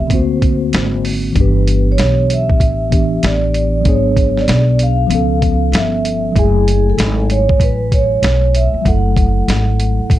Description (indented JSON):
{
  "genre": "hip hop, jazz-hop",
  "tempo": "96 BPM",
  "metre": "4/4",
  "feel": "swing 64% on 16ths",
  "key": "unclear",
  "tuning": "A4 = 440 Hz",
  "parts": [
    { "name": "vibraphone with soft mallets", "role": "melody", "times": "0.0-10.2 s", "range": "G#4 to F#5", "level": "-19 LUFS", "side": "right 1 dB", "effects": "none" },
    { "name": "mellow tine electric piano", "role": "accompaniment", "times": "0.0-10.2 s", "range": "D3 to G#5", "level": "-19 LUFS", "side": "equal", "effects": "medium stereo tremolo, plate reverb" },
    { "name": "upright bass", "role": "bass", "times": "0.0-10.2 s", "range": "F#1 to D2", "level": "-15 LUFS", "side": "equal", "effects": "none" },
    { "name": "boom bap sampler-style drum kit", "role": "drums", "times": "0.1-10.2 s", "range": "hi-hat, kick drum, snare drum", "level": "-16 LUFS", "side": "equal", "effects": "none" }
  ],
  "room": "light reverb",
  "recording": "dark, warm production",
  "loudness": "-11 LUFS",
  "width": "side -14 dB against mid",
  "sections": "0.0-10.2 A section",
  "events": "none",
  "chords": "0.1 Daug7; 1.4 G6; 3.9 G#m7b5; 5.1 C#7alt; 6.4 F#m9"
}